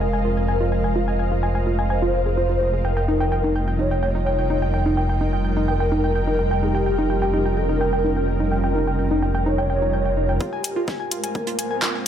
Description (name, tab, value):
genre	melodic techno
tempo	127 BPM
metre	4/4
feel	straight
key	unclear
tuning	A4 = 440 Hz
part	expressive portamento lead	melody	0.0-12.1 s	G4 to Db5	-26 LUFS	equal	ensemble chorus, cassette tape, sidechain pumping, dub echo
part	dark analog pad	sustained chords	0.0-12.1 s	G3 to C5	-29 LUFS	right 2 dB	chorus, sidechain pumping
part	woody wave-folded pluck	arpeggios	0.0-12.0 s	Eb4 to Ab5	-26 LUFS	equal	chorus, sidechain pumping, digital delay
part	swelling detuned saw bass	bass	0.0-10.4 s	F1	-22 LUFS	equal	sidechain pumping
part	ethereal airy pad	texture	0.0-12.1 s	F4 to G5	-29 LUFS	right 1 dB	ensemble chorus, built-in reverb, sidechain pumping
part	electronic kick drum	drums	10.4-11.9 s	none	-31 LUFS	equal	overdrive, high-pass filter on kick, studio reverb
part	warm soul drum kit	drums	10.4-12.1 s	hi-hat, shaker, snare drum	-38 LUFS	right 3 dB	none
part	riser	sound effects	11.0-12.1 s	none	-34 LUFS	right 3 dB	none
part	deep house drum kit	drums	10.6-11.9 s	handclaps, hi-hat	-22 LUFS	left 1 dB	overdrive, high-pass filter on hats, studio reverb, high-pass filter on snare
room	light reverb, small room ambience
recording	none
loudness	-19 LUFS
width	side -9 dB against mid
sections	0.0-10.4 A section; 10.4-12.1 B section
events	filter sweep on analog synth lead 0.0-10.4; build-up 10.4-12.1; filter sweep 10.4-12.1; riser 11.0-12.1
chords	0.0 Fm; 2.8 Eb/F; 10.4 Fm